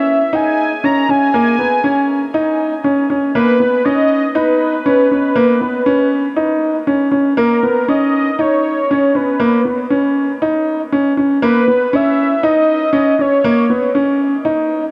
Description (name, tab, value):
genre	electronica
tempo	119 BPM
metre	4/4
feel	straight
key	unclear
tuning	A4 = 443 Hz
part	warm velvety synth lead	melody	0.0-14.2 s	A#4 to A#5	-19 LUFS	equal	chorus
part	warm grand piano	riff	0.0-14.8 s	A#3 to D#4	-16 LUFS	equal	none
room	moderate huge ambient reverb, RT60 7.5 s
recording	none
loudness	-15 LUFS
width	mono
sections	0.0-7.4 A section; 7.4-14.9 A section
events	drop 0.0-7.4, 7.4-14.9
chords	0.0 Badd9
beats	0.33 0.83 | 1.34 1.84 2.35 2.85 | 3.36 3.86 4.36 4.87 | 5.37 5.88 6.38 6.88 | 7.39 7.89 8.40 8.90 | 9.41 9.91 10.41 10.92 | 11.42 11.93 12.43 12.94 | 13.44 13.94 14.45